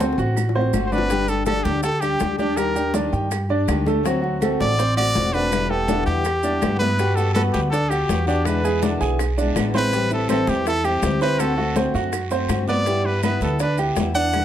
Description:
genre	latin, Cuban son and guajira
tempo	163 BPM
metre	4/4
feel	straight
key	G major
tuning	A4 = 441 Hz
part	flamenco guitar	accompaniment	0.0-14.4 s	B2 to G4	-26 LUFS	left 5 dB	none
part	bright grand piano	arpeggios	0.0-14.4 s	F#3 to G#5	-25 LUFS	right 4 dB	none
part	upright bass	bass	0.0-14.4 s	E1 to G2	-24 LUFS	equal	none
part	congas	percussion	0.0-14.4 s	none	-28 LUFS	left 2 dB	none
part	maracas	percussion	0.0-14.4 s	none	-38 LUFS	right 9 dB	none
part	bongos	percussion	0.1-14.4 s	none	-32 LUFS	left 9 dB	none
part	claves	percussion	0.4-14.4 s	none	-36 LUFS	right 11 dB	none
part	brilliant trumpet	melody	0.9-14.4 s	G4 to F#5	-23 LUFS	equal	slapback echo
part	guiro	percussion	7.0-14.4 s	none	-38 LUFS	right 6 dB	none
room	light reverb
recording	close, detailed microphones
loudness	-18 LUFS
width	side -10 dB against mid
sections	0.0-14.4 A section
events	drum fill 0.0-1.1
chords	0.0 D7; 1.1 G5; 2.6 Ebmaj7; 4.1 D7; 5.5 Em7; 7.0 Gmaj7; 8.5 E7; 9.9 Am7; 11.4 D7; 12.9 G6

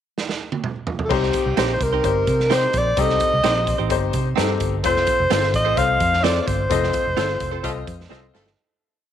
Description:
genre	uptempo 1960s-style soul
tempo	128 BPM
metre	4/4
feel	straight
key	unclear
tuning	A4 = 437 Hz
part	raw garage drum kit	drums	0.2-8.6 s	crash cymbal, hi-hat, kick drum, snare drum, toms	-26 LUFS	right 4 dB	none
part	breathy alto saxophone	melody	1.0-8.1 s	G4 to F5	-21 LUFS	equal	none
part	clear grand piano	accompaniment	1.1-8.5 s	C4 to Eb5	-24 LUFS	left 10 dB	none
part	vintage muted fingered electric bass	bass	1.1-8.5 s	F1 to C3	-24 LUFS	equal	none
part	direct-recorded clean electric guitar	stabs	1.6-8.3 s	C4 to C5	-27 LUFS	right 11 dB	none
part	mellow horn section	second line	7.6-8.5 s	A3 to A4	-33 LUFS	right 1 dB	none
room	moderate spring reverb, RT60 1.9 s, studio reverb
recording	1960s-style stereo with parts hard left and right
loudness	-18 LUFS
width	side -10 dB against mid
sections	0.0-1.1 pickup bar; 1.1-8.6 pre-chorus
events	drum fill 0.2-1.1, 8.1-8.6; fade-out 6.7-8.6; band accent 6.7-8.6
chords	0.0 N.C.; 1.1 Cm; 4.8 F

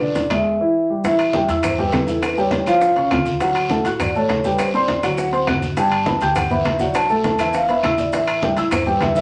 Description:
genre	Afro-Cuban jazz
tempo	203 BPM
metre	4/4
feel	straight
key	unclear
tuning	A4 = 440 Hz
part	vibraphone with soft mallets	melody	0.0-9.2 s	A4 to A5	-23 LUFS	equal	none
part	dark baby grand piano	accompaniment	0.0-9.2 s	D3 to G6	-23 LUFS	equal	none
part	upright bass	bass	0.0-9.2 s	G1 to A2	-33 LUFS	equal	none
part	congas	percussion	0.0-9.2 s	none	-29 LUFS	equal	none
part	bongos	percussion	0.2-9.2 s	none	-29 LUFS	equal	none
part	guiro	percussion	0.2-9.2 s	none	-38 LUFS	equal	none
part	maracas	percussion	0.2-9.2 s	none	-45 LUFS	equal	none
part	timbales	percussion	0.2-9.2 s	none	-30 LUFS	equal	none
part	claves	percussion	0.3-8.9 s	none	-32 LUFS	equal	none
room	wet studio reverb, RT60 0.6 s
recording	none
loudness	-19 LUFS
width	mono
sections	0.0-1.0 A section; 1.0-9.2 B section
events	none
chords	0.5 E; 1.0 A5; 2.2 Em; 2.8 Aaug; 3.4 Dmaj7; 4.6 Am7; 5.2 D7; 5.8 Gmaj9; 7.0 B7sus4; 7.5 E5; 8.1 A5

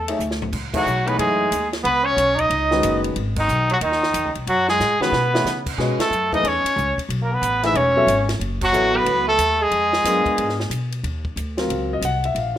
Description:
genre	modal jazz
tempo	183 BPM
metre	4/4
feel	swing 64% on 8ths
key	C# minor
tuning	A4 = 440 Hz
part	bright trumpet	melody	0.0-10.7 s	D#4 to E5	-20 LUFS	equal	none
part	warm tenor saxophone	second line	0.0-10.7 s	D#3 to E4	-24 LUFS	right 2 dB	none
part	upright bass	bass	0.0-12.6 s	E1 to C#3	-26 LUFS	left 1 dB	none
part	warm concert grand piano	accompaniment	0.1-12.6 s	D#3 to Gb5	-24 LUFS	left 2 dB	none
part	compact cocktail drum kit	drums	0.1-12.6 s	crash cymbal, hi-hat, kick drum, ride cymbal, snare drum, toms	-29 LUFS	equal	none
room	light reverb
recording	none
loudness	-18 LUFS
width	side -11 dB against mid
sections	0.5-11.0 A section; 11.0-12.6 B section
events	drum fill 0.2-0.5, 4.8-5.5; band accent 0.7, 3.3, 5.9, 8.6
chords	0.0 Gbm9 (rootless); 0.5 C#9sus4; 5.8 B9sus4; 9.7 A#7b9; 11.0 Ebm9

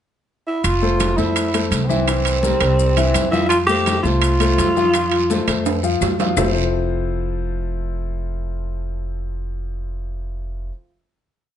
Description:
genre	Afro-Cuban jazz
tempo	168 BPM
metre	4/4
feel	straight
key	F major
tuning	A4 = 440 Hz
part	growling tenor saxophone	melody	0.5-6.0 s	B3 to G4	-19 LUFS	right 1 dB	none
part	upright bass	bass	0.6-10.7 s	F1 to F2	-22 LUFS	right 1 dB	none
part	claves	percussion	0.6-6.5 s	none	-31 LUFS	left 8 dB	none
part	congas	percussion	0.6-6.5 s	none	-27 LUFS	right 2 dB	none
part	guiro	percussion	0.6-6.5 s	none	-32 LUFS	right 8 dB	none
part	maracas	percussion	0.6-6.5 s	none	-33 LUFS	left 10 dB	none
part	timbales	percussion	0.6-6.5 s	none	-25 LUFS	right 10 dB	none
part	clear concert grand piano	accompaniment	0.8-10.7 s	E3 to F5	-22 LUFS	left 5 dB	none
room	light reverb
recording	nothing above 11.0 kHz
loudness	-16 LUFS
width	side -10 dB against mid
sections	0.0-0.6 pickup bar; 0.6-6.4 A section; 6.4-9.2 final chord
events	drum fill 5.7-6.4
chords	0.0 N.C.; 0.6 Fmaj7; 2.1 C7; 3.5 F; 6.4 Fmaj7

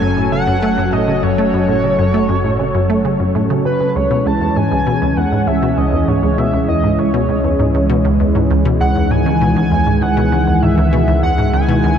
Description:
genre	ambient, sequencer-driven space music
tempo	99 BPM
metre	4/4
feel	straight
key	unclear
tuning	A4 = 442 Hz
part	pulse-width lead	melody	0.0-12.0 s	B4 to A5	-19 LUFS	equal	chorus, cassette tape, tape echo
part	lush unison pad	sustained chords	0.0-12.0 s	D#3 to A4	-17 LUFS	equal	chorus
part	resonant blip pluck	riff	0.0-11.9 s	C#2 to A3	-17 LUFS	equal	chorus, tape echo
part	round analog bass	bass	0.0-12.0 s	F#1 to C#2	-21 LUFS	equal	none
room	wet huge ambient reverb, RT60 9.0 s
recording	dark, warm production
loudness	-12 LUFS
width	side -8 dB against mid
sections	0.0-12.0 A section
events	fade-in on analog synth bass 0.0-12.0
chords	0.0 F#m; 4.0 C#m

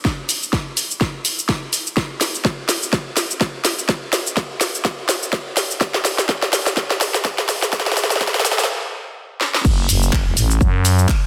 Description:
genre	bass house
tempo	125 BPM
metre	4/4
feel	swing 57% on 16ths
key	F# minor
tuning	A4 = 438 Hz
part	electronic kick drum	drums	0.0-11.2 s	none	-22 LUFS	equal	none
part	house drum kit	drums	0.1-11.2 s	cabasa, crash cymbal, handclaps, hi-hat, snare drum	-21 LUFS	equal	none
part	growling FM bass	bass	9.6-11.1 s	E1 to F#2	-19 LUFS	equal	tube saturation, sidechain pumping
room	moderate lush hall reverb, RT60 1.8 s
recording	dense, heavily limited modern master, high-pass filter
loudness	-19 LUFS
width	mono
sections	0.0-9.7 A section; 9.7-11.3 B section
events	build-up 0.0-9.7; drum fill 0.0-8.7, 9.4; stop 8.7-9.7; drop 9.7-11.3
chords	none

